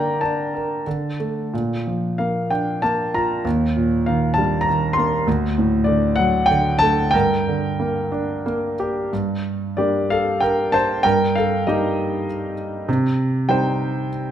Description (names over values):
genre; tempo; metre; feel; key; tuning
classical, lyrical solo piano; 87-102 BPM; 3/4; rubato; G minor; A4 = 440 Hz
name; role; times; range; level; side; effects
warm concert grand piano; solo; 0.0-14.3 s; D2 to C6; -18 LUFS; equal; none
room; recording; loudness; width
moderate recital hall reverb, RT60 1.6 s; none; -18 LUFS; side -10 dB against mid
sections
0.0-9.1 A section; 9.1-14.3 B section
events
none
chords
0.0 Gmadd9/D; 0.9 D5; 1.5 Bb; 3.5 Eb; 5.3 D; 7.1 Gm; 11.0 Eb/G; 12.9 Cm